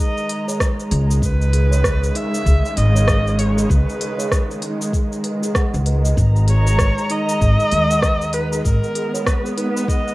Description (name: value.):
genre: organic downtempo.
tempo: 97 BPM.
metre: 4/4.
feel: swing 60% on 16ths.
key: G# minor.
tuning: A4 = 440 Hz.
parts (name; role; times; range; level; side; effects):
warm kamancheh; melody; 0.0-10.1 s; A#4 to E5; -23 LUFS; equal; tape echo, plate reverb.
muted studio string section; sustained chords; 0.0-10.1 s; C#3 to A#5; -24 LUFS; right 1 dB; sidechain pumping.
steel tongue drum; arpeggios; 0.0-10.1 s; D#4 to F#5; -30 LUFS; equal; tape echo, plate reverb.
organic electronic drum kit; drums; 0.2-10.1 s; hi-hat, rim click, shaker; -25 LUFS; equal; none.
electronic kick drum; drums; 0.6-10.0 s; none; -19 LUFS; equal; none.
upright bass; bass; 0.9-8.8 s; G#1 to D#2; -16 LUFS; equal; sidechain pumping.
room: moderate studio reverb, RT60 0.5 s.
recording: rough home demo mix.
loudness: -16 LUFS.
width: side -19 dB against mid.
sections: 0.0-10.1 A section.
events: none.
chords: 0.0 G#5; 1.2 C#7(no3); 6.2 G#m.